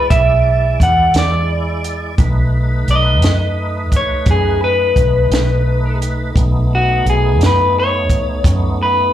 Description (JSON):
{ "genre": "slow blues", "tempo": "58 BPM (dotted quarters)", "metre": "12/8", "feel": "straight", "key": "B mixolydian", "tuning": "A4 = 440 Hz", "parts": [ { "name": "electric guitar at the edge of break-up", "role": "melody", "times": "0.0-9.1 s", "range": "F#4 to F#5", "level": "-16 LUFS", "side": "equal", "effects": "slapback echo" }, { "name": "tonewheel organ", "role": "sustained chords", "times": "0.0-9.1 s", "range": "G#3 to D5", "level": "-24 LUFS", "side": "right 1 dB", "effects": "slow rotary speaker, overdrive, chorus vibrato" }, { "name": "vintage muted fingered electric bass", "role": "bass", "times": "0.0-9.1 s", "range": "B1 to F#2", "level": "-16 LUFS", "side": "equal", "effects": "none" }, { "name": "compact cocktail drum kit", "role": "drums", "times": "0.1-8.6 s", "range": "hi-hat, kick drum, snare drum", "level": "-16 LUFS", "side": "equal", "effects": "none" } ], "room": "light reverb", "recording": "live gig heard through the venue's PA, club reverb", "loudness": "-12 LUFS", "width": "side -11 dB against mid", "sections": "0.0-9.1 A section", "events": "none", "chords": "0.0 E7; 2.2 B7" }